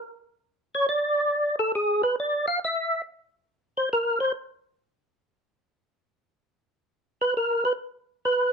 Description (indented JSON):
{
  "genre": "jazz",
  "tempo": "139 BPM",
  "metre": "4/4",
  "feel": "swing 68% on 8ths",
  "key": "unclear",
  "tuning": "A4 = 441 Hz",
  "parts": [
    { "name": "percussive tonewheel organ", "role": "solo", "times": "0.7-4.3, 7.2-8.5 s", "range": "Ab4 to F5", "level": "-23 LUFS", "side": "equal", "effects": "slow rotary speaker, chorus vibrato" }
  ],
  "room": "light reverb",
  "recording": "nothing above 10.7 kHz",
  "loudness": "-24 LUFS",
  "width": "side -5 dB against mid",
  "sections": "0.0-8.5 A section",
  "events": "tonewheel organ solo 0.0-8.5",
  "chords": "none",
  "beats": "0.42 0.85 1.29 | 1.72 2.15 2.58 3.02 | 3.45 3.88 4.31 4.74 | 5.18 5.61 6.04 6.47 | 6.91 7.34 7.77 8.20"
}